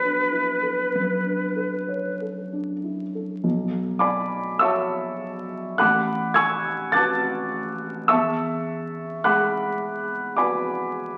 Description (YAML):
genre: classical, impressionist duo for flute and grand piano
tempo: 47-54 BPM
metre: 4/4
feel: rubato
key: B dorian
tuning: A4 = 440 Hz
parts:
  - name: silver concert flute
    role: melody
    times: 0.0-2.2 s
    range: B4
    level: -26 LUFS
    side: equal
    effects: none
  - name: dark concert grand piano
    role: accompaniment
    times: 0.0-11.2 s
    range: A1 to A6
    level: -25 LUFS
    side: equal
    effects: none
room: wet recital hall reverb, RT60 1.4 s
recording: very old 78 rpm record, vinyl crackle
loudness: -24 LUFS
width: mono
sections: 0.0-3.4 A section; 3.4-11.2 A section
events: none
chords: 0.0 Bm11; 5.8 A69; 8.1 E13